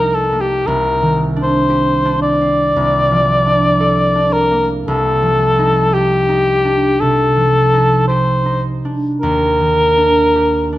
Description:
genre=classical, impressionist duo for cor anglais and harp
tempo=52-59 BPM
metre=4/4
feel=rubato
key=unclear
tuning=A4 = 439 Hz
part: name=mellow cor anglais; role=melody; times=0.0-10.8 s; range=G4 to D5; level=-14 LUFS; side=left 1 dB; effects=none
part: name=concert harp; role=accompaniment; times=0.0-10.8 s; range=C2 to A4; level=-16 LUFS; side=right 1 dB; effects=none
room=moderate recital hall reverb, RT60 1.4 s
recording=close, detailed microphones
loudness=-12 LUFS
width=side -15 dB against mid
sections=0.0-10.8 A section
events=none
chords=0.0 F11/C; 0.7 Cm9; 2.8 Bbmaj9/C; 4.9 F13/C; 9.2 Ebmaj7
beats=| 0.66 1.68 2.75 3.80 | 4.88 5.93 6.99 8.07 | 9.21 10.34

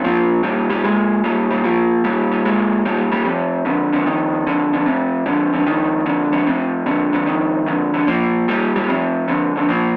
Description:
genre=blues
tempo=149 BPM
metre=4/4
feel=swing 67% on 8ths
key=Bb mixolydian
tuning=A4 = 440 Hz
part: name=electric guitar through a small old amp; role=solo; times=0.0-10.0 s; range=F2 to Ab3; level=-18 LUFS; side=equal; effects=none
room=wet studio reverb, RT60 0.6 s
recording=none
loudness=-18 LUFS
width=mono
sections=0.0-9.7 A section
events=none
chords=0.0 Bb5; 3.3 F5; 8.1 Bb5; 8.9 F5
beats=| 0.04 0.44 0.84 1.24 | 1.64 2.05 2.45 2.85 | 3.25 3.65 4.06 4.46 | 4.86 5.26 5.66 6.07 | 6.47 6.87 7.27 7.67 | 8.07 8.48 8.88 9.28 | 9.68

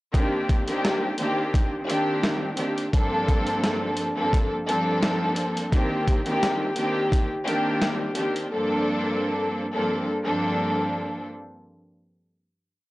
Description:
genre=hip hop, boom-bap hip-hop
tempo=86 BPM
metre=4/4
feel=swing 56% on 16ths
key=G minor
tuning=A4 = 439 Hz
part: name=warm studio string section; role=accompaniment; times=0.1-11.2 s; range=G2 to A4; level=-24 LUFS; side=equal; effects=high-pass filter, low-pass filter
part: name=dusty soul sampler-style drum kit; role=drums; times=0.1-8.5 s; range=hi-hat, kick drum, snare drum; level=-25 LUFS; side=equal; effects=vintage 12-bit sampler grit
room=little or no reverb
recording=dry, gritty hardware recording, transformer saturation, cassette tape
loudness=-22 LUFS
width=side -18 dB against mid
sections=0.1-11.3 verse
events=none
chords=0.1 Cm9; 2.9 Gm11; 5.7 Cm9; 8.5 Gm11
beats=| 0.14 0.84 1.54 2.24 | 2.93 3.63 4.33 5.03 | 5.72 6.42 7.12 7.82 | 8.52 9.21 9.91 10.61

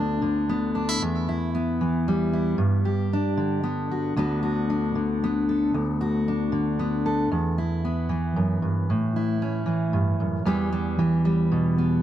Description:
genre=folk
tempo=114 BPM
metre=3/4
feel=straight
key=unclear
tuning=A4 = 440 Hz
part: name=fingerpicked steel-string acoustic guitar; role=solo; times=0.0-12.0 s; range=D2 to A4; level=-22 LUFS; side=equal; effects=analog delay
room=light reverb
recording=echo-heavy mix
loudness=-22 LUFS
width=side -11 dB against mid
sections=0.0-10.5 A section; 10.5-12.0 B section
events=none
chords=0.0 Bm/D; 1.0 Em; 2.6 G; 4.2 D6; 7.3 Em; 8.9 A; 10.5 Em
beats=0.49 | 1.01 1.54 2.06 | 2.59 3.12 3.64 | 4.17 4.69 5.22 | 5.74 6.26 6.79 | 7.31 7.84 8.36 | 8.89 9.41 9.94 | 10.46 10.98 11.51

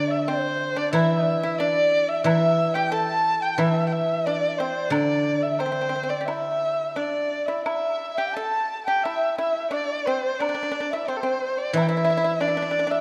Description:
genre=chinese traditional, Chinese chamber ensemble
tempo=89 BPM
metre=4/4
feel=rubato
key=unclear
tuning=A4 = 440 Hz
part: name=dark erhu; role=melody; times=0.0-13.0 s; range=A4 to A5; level=-27 LUFS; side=equal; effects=none
part: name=mellow hollow large dizi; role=second line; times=0.0-13.0 s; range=C5 to A5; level=-31 LUFS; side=equal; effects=none
part: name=pipa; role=second line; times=0.0-13.0 s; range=C4 to A4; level=-33 LUFS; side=equal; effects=none
part: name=guzheng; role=accompaniment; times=0.0-7.0, 11.7-13.0 s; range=D3 to E3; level=-28 LUFS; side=equal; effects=none
part: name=woodblock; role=percussion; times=0.9-11.9 s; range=none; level=-39 LUFS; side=equal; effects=none
room=wet concert hall reverb, RT60 2.2 s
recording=dark, warm production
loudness=-24 LUFS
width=mono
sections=0.0-13.0 A section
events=none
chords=none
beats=0.27 0.94 1.60 | 2.26 2.93 3.59 4.26 | 4.93 5.60 6.28 6.97 | 7.66 8.36 9.05 9.74 | 10.42 11.10 11.77 12.44

